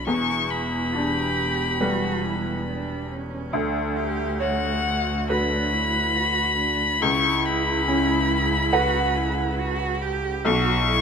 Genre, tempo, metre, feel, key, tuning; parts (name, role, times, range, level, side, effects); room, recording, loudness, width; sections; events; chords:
neoclassical piano and strings; 70 BPM; 4/4; rubato; B minor; A4 = 439 Hz
rich violin; melody; 0.0-11.0 s; F#5 to C#6; -24 LUFS; left 3 dB
rich cello; second line; 0.0-11.0 s; C#4 to G4; -29 LUFS; right 5 dB
bright upright piano; accompaniment; 0.0-11.0 s; B1 to F#5; -25 LUFS; equal
warm double bass; bass; 0.0-11.0 s; E1 to D2; -29 LUFS; equal
light reverb; minimal, uncompressed stereo recording; -21 LUFS; side -6 dB against mid
0.0-11.0 A section
0.1 Em7; 3.5 Bmadd9/D; 7.0 F#sus4/C#; 10.4 Bsus2